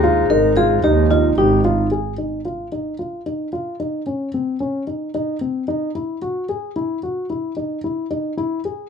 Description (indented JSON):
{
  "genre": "contemporary instrumental, chamber music in an uneven meter",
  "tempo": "111 BPM",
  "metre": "7/4",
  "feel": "straight",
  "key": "Ab major",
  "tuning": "A4 = 436 Hz",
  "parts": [
    { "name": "vibraphone with soft mallets", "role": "second line", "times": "0.0-1.9 s", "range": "Eb4 to Bb4", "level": "-19 LUFS", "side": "left 5 dB", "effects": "none" },
    { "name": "warm woodwind section", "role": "sustained chords", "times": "0.0-1.9 s", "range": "C3 to Eb4", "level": "-27 LUFS", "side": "right 3 dB", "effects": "none" },
    { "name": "dark baby grand piano", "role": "arpeggios", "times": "0.0-8.9 s", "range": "C4 to Ab4", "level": "-20 LUFS", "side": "left 1 dB", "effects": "none" },
    { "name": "warm double bass", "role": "bass", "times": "0.0-1.8 s", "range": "Ab1 to Eb2", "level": "-20 LUFS", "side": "right 5 dB", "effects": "none" }
  ],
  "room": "light reverb",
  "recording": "dark, warm production",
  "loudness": "-18 LUFS",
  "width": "side -7 dB against mid",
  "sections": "0.0-1.9 A section; 1.9-8.9 B section",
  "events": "none",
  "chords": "0.0 Ab; 1.9 Ab (rootless); 5.7 E",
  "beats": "0.30 0.84 1.38 | 1.92 2.45 2.99 3.53 4.07 4.61 5.15 | 5.69 6.22 6.76 7.30 7.84 8.38"
}